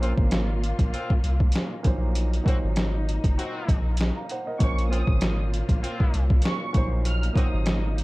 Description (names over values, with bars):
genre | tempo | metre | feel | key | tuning
hip hop, boom-bap hip-hop | 98 BPM | 4/4 | swing 55% on 16ths | Bb minor | A4 = 442 Hz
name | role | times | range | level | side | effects
dark concert grand piano | accompaniment | 0.0-8.0 s | Bb2 to Bb5 | -33 LUFS | right 3 dB | cassette tape, high-pass filter, low-pass filter
warm studio string section | sustained chords | 0.0-8.0 s | Bb2 to F4 | -36 LUFS | left 2 dB | high-pass filter, low-pass filter
bright trumpet section | stabs | 0.0-7.5 s | C4 to Gb4 | -37 LUFS | left 1 dB | high-pass filter, low-pass filter, digital delay
soft dub sub bass | bass | 0.0-8.0 s | Gb1 to C2 | -25 LUFS | equal | none
trip hop sampler-style drum kit | drums | 0.0-8.0 s | hi-hat, kick drum, snare drum | -24 LUFS | equal | overdrive
warm studio violin section | melody | 4.6-7.8 s | Db6 to F6 | -34 LUFS | right 2 dB | high-pass filter, low-pass filter, digital delay
room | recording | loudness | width
little or no reverb | dark, warm production, vinyl crackle | -22 LUFS | side -21 dB against mid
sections
0.0-8.0 A section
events
none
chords
0.0 Bbmadd9; 1.8 Cm7b5; 4.6 Bbmadd9; 6.7 Cm7b5